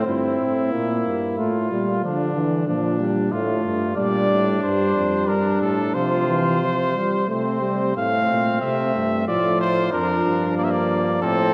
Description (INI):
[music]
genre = classical, imitative canzona for brass ensemble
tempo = 92 BPM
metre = 3/4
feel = straight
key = F major from 4.0 s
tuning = A4 = 440 Hz
[part]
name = warm cornet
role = melody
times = 0.0-0.1, 4.0-11.5 s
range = A4 to F5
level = -26 LUFS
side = equal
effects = none
[part]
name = warm flugelhorn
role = second line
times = 0.0-11.5 s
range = Bb3 to F4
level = -28 LUFS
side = equal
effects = none
[part]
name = warm trombone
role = accompaniment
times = 0.0-11.5 s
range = E3 to C4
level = -25 LUFS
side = equal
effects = none
[part]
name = warm bass trombone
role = bass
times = 0.0-11.5 s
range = F2 to D3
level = -29 LUFS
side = equal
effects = none
[sound]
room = wet church reverb, RT60 2.9 s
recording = none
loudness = -21 LUFS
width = mono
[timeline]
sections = 0.1-8.0 A section; 8.0-11.5 B section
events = none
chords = 0.1 Edim/G; 1.4 F/A; 2.0 Bb/D; 3.3 F/A; 4.0 Gm; 5.9 Csus4; 7.3 C5; 8.0 F/A; 9.3 Dm/A; 9.9 Bb/F